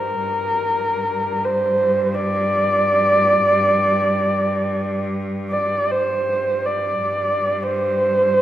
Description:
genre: mongolian traditional, Mongolian folk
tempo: free time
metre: none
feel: none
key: G yu mode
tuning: A4 = 440 Hz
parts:
  - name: dark horsehead fiddle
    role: melody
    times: 0.0-8.4 s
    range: Bb4 to D5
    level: -18 LUFS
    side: equal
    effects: none
  - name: bright cello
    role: drone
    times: 0.0-8.4 s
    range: G2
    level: -25 LUFS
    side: equal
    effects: none
room: wet recital hall reverb, RT60 1.6 s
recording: none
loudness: -17 LUFS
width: side -12 dB against mid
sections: 0.0-8.4 A section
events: none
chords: none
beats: free time

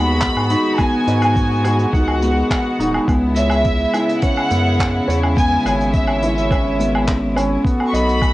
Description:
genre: piano and strings electronica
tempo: 105 BPM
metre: 4/4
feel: straight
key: C# minor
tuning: A4 = 441 Hz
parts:
  - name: warm studio violin section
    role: melody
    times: 0.0-8.3 s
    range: E5 to C#6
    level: -22 LUFS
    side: equal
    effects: cassette tape
  - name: warm studio string section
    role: sustained chords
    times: 0.0-8.3 s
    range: C#3 to F#4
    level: -22 LUFS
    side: left 1 dB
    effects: sidechain pumping, cassette tape
  - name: dark upright piano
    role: riff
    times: 0.0-8.3 s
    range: B3 to D#5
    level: -20 LUFS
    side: equal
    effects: cassette tape
  - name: round analog bass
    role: bass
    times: 0.0-8.3 s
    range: D#1 to G#2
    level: -20 LUFS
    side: equal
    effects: sidechain pumping
  - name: electronic kick drum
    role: drums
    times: 0.2-8.3 s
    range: none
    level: -19 LUFS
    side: equal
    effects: cassette tape
  - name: vintage brush drum kit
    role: drums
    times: 0.2-8.3 s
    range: handclaps, hi-hat, woodblock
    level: -25 LUFS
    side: equal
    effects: cassette tape
room: moderate studio reverb, RT60 0.6 s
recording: home recording on cassette, nothing above 10.3 kHz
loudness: -14 LUFS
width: side -17 dB against mid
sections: 0.0-8.3 A section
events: none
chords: 0.0 G#m7; 3.1 C#m7; 7.6 B7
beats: 0.22 | 0.79 1.36 1.94 2.51 | 3.08 3.65 4.22 4.79 | 5.36 5.93 6.51 7.08 | 7.65 8.22

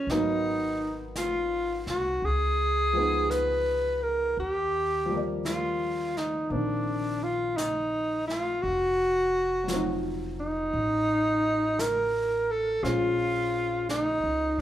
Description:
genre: jazz ballad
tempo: 56 BPM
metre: 4/4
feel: swing 68% on 8ths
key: unclear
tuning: A4 = 440 Hz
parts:
  - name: breathy alto saxophone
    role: melody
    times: 0.0-14.6 s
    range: Db4 to Cb5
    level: -26 LUFS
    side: equal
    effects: none
  - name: warm baby grand piano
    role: accompaniment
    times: 0.0-14.6 s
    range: Eb3 to D5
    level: -34 LUFS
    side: equal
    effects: none
  - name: upright bass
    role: bass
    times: 0.1-14.6 s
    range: F1 to Eb2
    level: -35 LUFS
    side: equal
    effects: none
  - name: jazz brush drum kit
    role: drums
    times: 0.1-14.6 s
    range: brushed snare drum, hi-hat, snare drum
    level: -40 LUFS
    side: right 1 dB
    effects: none
room: moderate large studio reverb, RT60 1.2 s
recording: band playing live in one room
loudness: -25 LUFS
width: side -12 dB against mid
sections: 0.0-14.6 A section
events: none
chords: 0.1 Abm7; 2.2 Db9; 4.4 Ebmaj9; 8.6 F7b9; 12.8 Bbm9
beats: | 0.08 1.15 2.22 3.29 | 4.37 5.44 6.51 7.58 | 8.63 9.68 10.73 11.78 | 12.84 13.89

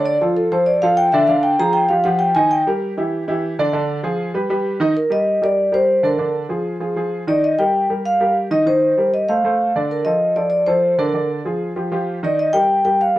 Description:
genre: jazz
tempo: 194 BPM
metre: 4/4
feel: straight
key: unclear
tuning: A4 = 440 Hz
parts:
  - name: vibraphone with soft mallets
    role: melody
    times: 0.0-2.6, 5.0-13.2 s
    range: F4 to Bb5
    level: -16 LUFS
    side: equal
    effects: none
  - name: warm upright piano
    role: accompaniment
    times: 0.0-13.2 s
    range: D3 to Eb5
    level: -20 LUFS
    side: right 1 dB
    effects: none
room: moderate small room reverb, RT60 0.5 s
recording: none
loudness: -15 LUFS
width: side -15 dB against mid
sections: 0.0-5.0 A section; 5.0-13.2 B section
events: vibraphone solo 0.0-5.0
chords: 0.1 Dm; 1.3 Ddim; 1.9 Ebadd9; 2.5 Eb; 3.1 Dsus24; 3.7 Ddim; 4.3 Gaug; 5.0 Cm7; 6.2 Ddim; 7.4 Eb; 9.3 F; 9.9 Dm7; 11.1 Ddim; 11.8 Ebadd9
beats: | 0.06 0.37 0.67 0.98 | 1.28 1.59 1.90 2.20 | 2.51 2.81 3.12 3.43 | 3.73 4.04 4.35 4.65 | 4.96 5.27 5.58 5.88 | 6.19 6.50 6.81 7.12 | 7.43 7.74 8.05 8.36 | 8.67 8.98 9.29 9.60 | 9.90 10.21 10.52 10.83 | 11.14 11.45 11.76 12.07 | 12.38 12.69 12.99

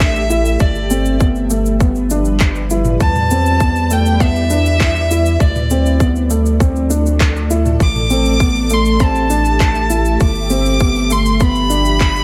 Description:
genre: piano and strings electronica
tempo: 100 BPM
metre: 4/4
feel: straight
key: A minor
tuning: A4 = 445 Hz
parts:
  - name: rich violin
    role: melody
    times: 0.0-12.2 s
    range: D5 to D6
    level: -21 LUFS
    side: equal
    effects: none
  - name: granular cloud pad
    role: sustained chords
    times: 0.0-12.2 s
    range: F3 to E5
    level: -26 LUFS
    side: equal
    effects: built-in reverb, sidechain pumping
  - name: felt-muted upright piano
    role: riff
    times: 0.0-12.2 s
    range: A3 to E4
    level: -21 LUFS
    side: equal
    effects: none
  - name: round analog bass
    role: bass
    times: 0.0-12.2 s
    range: G1 to E2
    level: -20 LUFS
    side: equal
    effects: sidechain pumping
  - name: electronic kick drum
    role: drums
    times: 0.0-12.1 s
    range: none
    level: -16 LUFS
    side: equal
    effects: overdrive
  - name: organic electronic drum kit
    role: drums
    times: 0.0-12.2 s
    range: handclaps, shaker, toms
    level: -25 LUFS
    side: equal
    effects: overdrive
room: light reverb, digital ambience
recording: none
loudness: -14 LUFS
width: mono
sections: 0.0-12.2 A section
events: none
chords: 0.0 A7(no3); 0.6 G7; 3.0 Em7; 5.4 Dm7; 7.8 Am7; 10.2 G7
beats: 0.01 | 0.61 1.21 1.81 2.41 | 3.01 3.61 4.21 4.81 | 5.41 6.01 6.61 7.21 | 7.81 8.41 9.01 9.61 | 10.21 10.81 11.41 12.01

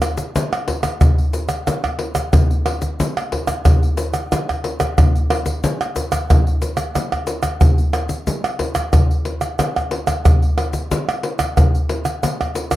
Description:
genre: samba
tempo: 91 BPM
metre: 4/4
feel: straight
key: none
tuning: none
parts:
  - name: egg shaker, pandeiro, tamborim and surdo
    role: percussion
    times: 0.0-12.8 s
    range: none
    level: -16 LUFS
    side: equal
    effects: none
room: little or no reverb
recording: dry, close 1970s-style studio recording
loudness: -16 LUFS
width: side -15 dB against mid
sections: 0.0-12.8 A section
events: none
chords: none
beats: 0.36 1.02 | 1.68 2.34 3.00 3.65 | 4.31 4.97 5.63 6.29 | 6.95 7.61 8.27 8.93 | 9.59 10.25 10.91 11.57 | 12.23

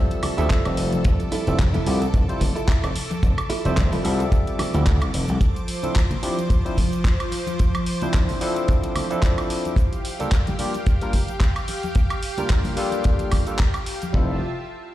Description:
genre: nu-disco, nu disco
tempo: 110 BPM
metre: 4/4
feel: swing 56% on 16ths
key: F major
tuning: A4 = 439 Hz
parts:
  - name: barky tine electric piano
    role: accompaniment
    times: 0.0-14.4 s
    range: F3 to E5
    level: -28 LUFS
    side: equal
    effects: overdrive, auto-pan, sidechain pumping, dub echo
  - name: lush unison pad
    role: sustained chords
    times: 0.0-14.4 s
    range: F3 to E6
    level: -30 LUFS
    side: equal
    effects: chorus, sidechain pumping
  - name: pop drum kit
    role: drums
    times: 0.1-14.1 s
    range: handclaps, hi-hat, woodblock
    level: -31 LUFS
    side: right 1 dB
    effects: none
  - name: congas and tube shaker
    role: percussion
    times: 0.1-14.1 s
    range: none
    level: -32 LUFS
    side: left 1 dB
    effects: none
  - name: direct-recorded clean electric guitar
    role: riff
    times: 0.2-5.3 s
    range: E4 to A4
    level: -31 LUFS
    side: right 4 dB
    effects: lush chorus, dub echo
  - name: gritty slap bass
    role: bass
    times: 0.4-5.4, 14.1-14.4 s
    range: F1 to D2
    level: -22 LUFS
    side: equal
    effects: overdrive, tube saturation
  - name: kick drum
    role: drums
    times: 0.5-14.3 s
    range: none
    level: -19 LUFS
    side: equal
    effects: none
room: small room ambience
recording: played on a big sound system in a bare room, large studio reverb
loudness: -19 LUFS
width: side -14 dB against mid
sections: 0.0-14.1 A section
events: none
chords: 0.0 Fmaj7; 9.8 Gm7; 14.1 Fmaj7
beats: 0.50 | 1.05 1.59 2.14 2.69 | 3.23 3.78 4.32 4.87 | 5.41 5.96 6.50 7.05 | 7.59 8.14 8.69 9.23 | 9.78 10.32 10.87 11.41 | 11.96 12.50 13.05 13.60 | 14.14

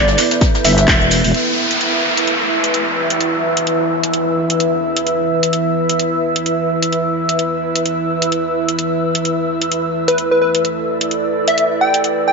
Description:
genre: bass house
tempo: 129 BPM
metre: 4/4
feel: swing 57% on 16ths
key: E minor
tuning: A4 = 440 Hz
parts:
  - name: plucky unison lead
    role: melody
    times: 0.0-1.3, 10.1-12.3 s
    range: B4 to G5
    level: -16 LUFS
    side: equal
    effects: cassette tape, ping-pong delay
  - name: deep dark ambient pad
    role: sustained chords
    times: 0.1-12.3 s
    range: E3 to B4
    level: -23 LUFS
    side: right 2 dB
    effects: chorus, built-in reverb, sidechain pumping
  - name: growling FM bass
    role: bass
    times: 0.0-1.3 s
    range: E1 to G1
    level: -16 LUFS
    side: left 1 dB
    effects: tube saturation, sidechain pumping
  - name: airy breathy pad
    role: texture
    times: 0.0-12.3 s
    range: E4 to G6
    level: -18 LUFS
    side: equal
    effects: chorus, sidechain pumping
  - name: garage drum kit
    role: drums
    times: 0.1-12.1 s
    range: handclaps, hi-hat, shaker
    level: -18 LUFS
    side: equal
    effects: none
  - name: soft brush drum kit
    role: drums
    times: 0.1-1.2 s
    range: hi-hat, snare drum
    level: -22 LUFS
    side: left 2 dB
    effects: sidechain pumping on hats, high-pass filter on hats, high-pass filter on snare, high-pass filter on room
  - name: electronic kick drum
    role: drums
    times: 0.4-1.0 s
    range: none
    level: -16 LUFS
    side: equal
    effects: none
  - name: downlifter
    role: sound effects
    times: 1.3-5.1 s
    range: none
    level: -19 LUFS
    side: equal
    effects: none
room: wet lush hall reverb, RT60 1.8 s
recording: nothing above 7.6 kHz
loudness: -14 LUFS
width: side -4 dB against mid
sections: 0.0-1.3 A section; 1.3-12.3 B section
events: filter sweep on FM bass 0.0-1.3; band accent 0.9; filter sweep on ambient pad 1.3-12.3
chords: 0.0 E5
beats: 0.41 0.88 | 1.34 1.81 2.27 2.74 | 3.21 3.67 4.13 4.60 | 5.07 5.53 6.00 6.46 | 6.93 7.39 7.86 8.32 | 8.79 9.25 9.72 10.18 | 10.65 11.11 11.58 12.04

